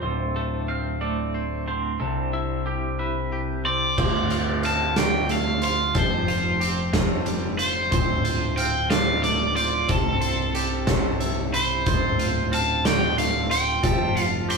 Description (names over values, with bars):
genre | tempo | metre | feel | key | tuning
post-rock | 61 BPM (dotted quarters) | 6/8 | straight | D minor | A4 = 441 Hz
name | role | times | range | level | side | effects
pedal steel guitar | sustained chords | 0.0-14.6 s | C3 to C5 | -32 LUFS | left 1 dB | none
twangy electric guitar | arpeggios | 0.0-14.6 s | G4 to B5 | -31 LUFS | right 5 dB | none
twelve-string electric guitar | arpeggios | 0.0-14.6 s | D2 to C5 | -31 LUFS | equal | tremolo
growling picked electric bass | bass | 0.0-14.6 s | D1 to D2 | -29 LUFS | left 1 dB | overdrive
cranked stack guitar | melody | 3.7-14.6 s | A4 to C6 | -25 LUFS | equal | overdrive
oversized low-tuned drum kit | drums | 4.0-14.6 s | crash cymbal, hi-hat, kick drum, snare drum | -24 LUFS | right 1 dB | none
room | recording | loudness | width
light reverb | band playing live in one room | -21 LUFS | side -4 dB against mid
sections
0.0-4.0 A section; 4.0-14.6 B section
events
none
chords
0.0 Dm7; 2.0 Cmaj7; 4.0 Dm7; 6.0 Fadd9; 7.9 Dm7; 9.9 Cmaj7; 11.9 Dm7; 13.8 Fadd9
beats
| 0.03 1.02 | 2.00 2.99 | 3.98 4.97 | 5.95 6.94 | 7.92 8.91 | 9.89 10.88 | 11.86 12.85 | 13.83